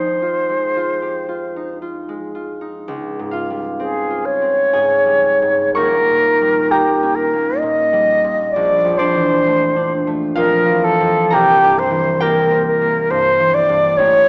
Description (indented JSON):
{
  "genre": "classical, impressionist duo for flute and harp",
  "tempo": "55-70 BPM",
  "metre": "3/4",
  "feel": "rubato",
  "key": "unclear",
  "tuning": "A4 = 440 Hz",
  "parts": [
    { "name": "silver concert flute", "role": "melody", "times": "0.0-14.3 s", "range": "G4 to Eb5", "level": "-14 LUFS", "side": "equal", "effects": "none" },
    { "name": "concert harp", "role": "accompaniment", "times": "0.0-14.3 s", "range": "Eb1 to Db6", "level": "-20 LUFS", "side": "equal", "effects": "none" }
  ],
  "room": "moderate scoring stage reverb, RT60 1.6 s",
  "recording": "worn, warbling old tape, cassette tape, warbly pitch drift, small speaker sound",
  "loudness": "-13 LUFS",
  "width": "side -32 dB against mid",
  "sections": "0.0-2.9 A section; 2.9-14.3 B section",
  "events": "none",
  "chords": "0.0 Fm9; 2.9 Dbmaj7#11; 5.8 Eb9; 8.5 Bbmaj7#11; 11.3 C9"
}